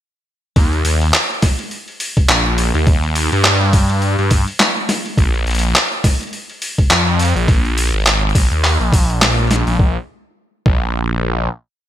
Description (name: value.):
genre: glitch hop.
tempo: 104 BPM.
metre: 4/4.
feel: swing 58% on 16ths.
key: unclear.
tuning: A4 = 440 Hz.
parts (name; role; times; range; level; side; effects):
phased detuned saw bass; bass; 0.6-11.5 s; Ab1 to G2; -15 LUFS; equal; phaser, tube saturation.
boom bap sampler-style drum kit; drums; 0.6-9.8 s; handclaps, hi-hat, snare drum; -17 LUFS; equal; overdrive, small room ambience, gated reverb.
electronic kick drum; drums; 0.6-10.8 s; none; -13 LUFS; equal; overdrive, small room ambience.
room: little or no reverb.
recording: bright 1980s-style digital production.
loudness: -13 LUFS.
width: side -11 dB against mid.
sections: 0.6-9.8 drop; 9.8-11.9 final note.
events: drop 0.6-9.8.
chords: none.